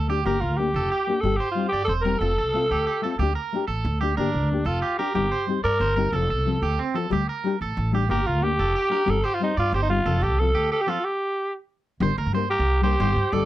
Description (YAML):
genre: highlife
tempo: 122 BPM (dotted quarters)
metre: 12/8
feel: straight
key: G minor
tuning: A4 = 440 Hz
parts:
  - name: electric guitar at the edge of break-up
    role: arpeggios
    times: 0.0-13.5 s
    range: C4 to D5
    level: -29 LUFS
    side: right 6 dB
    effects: slapback echo
  - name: upright bass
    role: bass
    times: 0.0-13.5 s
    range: E1 to G2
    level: -25 LUFS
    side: equal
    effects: none
  - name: nylon-string guitar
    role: accompaniment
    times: 0.1-13.4 s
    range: F3 to Bb4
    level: -26 LUFS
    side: left 6 dB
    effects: none
  - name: growling alto saxophone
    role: melody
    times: 0.3-13.5 s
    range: D4 to Bb4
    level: -24 LUFS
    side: equal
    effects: none
room: little or no reverb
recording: dry, close 1970s-style studio recording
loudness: -21 LUFS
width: side -14 dB against mid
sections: 0.0-12.0 A section; 12.0-13.5 B section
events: stop 11.0-12.0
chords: 0.3 Gm; 1.2 Cm/G; 2.2 F; 3.2 Dsus4; 4.2 Gm; 5.2 Cm/G; 6.1 F; 7.1 Dsus4; 8.1 Gm; 9.1 Cm/G; 10.1 F; 11.0 N.C.; 12.0 Gm